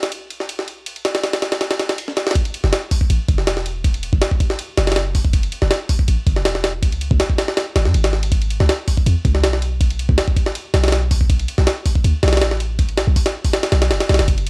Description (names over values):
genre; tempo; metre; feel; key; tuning
drum and bass, jungle; 161 BPM; 4/4; straight; F# minor; A4 = 441 Hz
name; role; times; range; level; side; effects
jungle sampler-style drum kit; drums; 0.0-14.5 s; hi-hat, kick drum, ride cymbal, snare drum; -17 LUFS; equal; high-pass filter on cymbals, studio reverb, cassette tape, high-pass filter on snare, high-pass filter on kick, high-pass filter on hats
warm 808-style bass; bass; 2.6-14.5 s; E1 to F#2; -17 LUFS; equal; none
room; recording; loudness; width
light reverb; home recording on cassette; -15 LUFS; side -33 dB against mid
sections
0.0-2.4 A section; 2.4-14.5 B section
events
drop 2.4-14.5; kick drops out 13.5-14.3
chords
none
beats
0.12 0.49 | 0.86 1.24 1.61 1.98 | 2.35 2.73 3.10 3.47 | 3.85 4.22 4.59 4.96 | 5.34 5.71 6.08 6.45 | 6.83 7.20 7.57 7.94 | 8.32 8.69 9.06 9.44 | 9.81 10.18 10.55 10.93 | 11.30 11.67 12.04 12.42 | 12.79 13.16 13.53 13.91 | 14.28